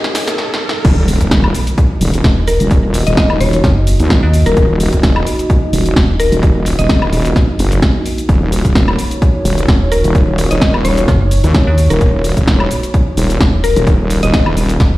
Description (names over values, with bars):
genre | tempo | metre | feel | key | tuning
bass house | 129 BPM | 4/4 | swing 54% on 16ths | Eb minor | A4 = 440 Hz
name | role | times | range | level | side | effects
dark analog pad | sustained chords | 0.0-15.0 s | Bb3 to Eb5 | -22 LUFS | right 1 dB | chorus, phaser, sidechain pumping
house drum kit | drums | 0.0-14.9 s | crash cymbal, hi-hat, shaker, snare drum, woodblock | -19 LUFS | equal | high-pass filter on snare, high-pass filter on hats, high-pass filter on perc, high-pass filter on cymbals
riser and impact | sound effects | 0.0-2.7 s | none | -20 LUFS | equal | none
wobble bass | bass | 0.8-14.8 s | Eb1 to Eb2 | -14 LUFS | equal | chorus, sidechain pumping
electronic kick drum | drums | 0.8-14.9 s | none | -14 LUFS | equal | none
metallic FM bass | bass | 2.2-6.3, 9.7-15.0 s | Eb1 to Eb2 | -13 LUFS | equal | overdrive, sidechain pumping
mallet-like synth pluck | melody | 2.5-7.0, 9.9-14.4 s | Bb4 to Eb5 | -19 LUFS | left 2 dB | chorus, tape echo
room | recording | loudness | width
digital ambience | played on a big sound system in a bare room, stone room reverb | -10 LUFS | side -17 dB against mid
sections
0.8-15.0 A section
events
drum fill 0.0-0.4, 0.4-0.8; riser 0.0-0.8; drop 0.8-15.0; impact 0.8-2.7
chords
0.0 Ebm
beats
0.38 | 0.85 1.31 1.78 2.24 | 2.71 3.17 3.64 4.10 | 4.57 5.03 5.50 5.96 | 6.43 6.89 7.36 7.82 | 8.29 8.75 9.22 9.68 | 10.15 10.61 11.08 11.54 | 12.01 12.47 12.94 13.40 | 13.87 14.34 14.80